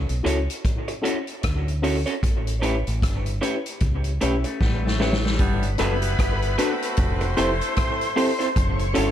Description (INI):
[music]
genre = lovers rock reggae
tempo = 76 BPM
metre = 4/4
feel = swing 59% on 16ths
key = D major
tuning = A4 = 441 Hz
[part]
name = deep dub fingered electric bass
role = bass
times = 0.0-9.1 s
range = F1 to D2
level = -24 LUFS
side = equal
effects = none
[part]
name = vintage drum kit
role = drums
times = 0.1-9.1 s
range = hi-hat, kick drum, rim click, snare drum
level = -25 LUFS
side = equal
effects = none
[part]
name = mellow FM electric piano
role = accompaniment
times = 0.2-9.1 s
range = C4 to B4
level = -29 LUFS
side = left 4 dB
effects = chorus, tremolo, dub echo
[part]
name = electric guitar through a small old amp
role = stabs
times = 0.2-9.1 s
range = A3 to C#5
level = -28 LUFS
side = right 3 dB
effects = dub echo
[part]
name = electric guitar through a small old amp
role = arpeggios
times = 4.2-5.6 s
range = E3 to E4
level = -32 LUFS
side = left 5 dB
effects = dub echo
[part]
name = clear saxophone section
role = second line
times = 5.4-8.1 s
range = G3 to F#4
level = -30 LUFS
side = right 2 dB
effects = dub echo
[part]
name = string machine, full ensemble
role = second line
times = 5.4-9.1 s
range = B4 to C#6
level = -28 LUFS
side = left 1 dB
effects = ensemble chorus, dub echo
[sound]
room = studio reverb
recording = none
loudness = -20 LUFS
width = side -10 dB against mid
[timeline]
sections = 0.0-5.4 A section; 5.4-9.1 B section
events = drum fill 4.6-5.4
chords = 0.0 Dmaj7; 2.2 A7; 5.4 Gmaj7; 7.0 Fmaj7; 8.6 F#m7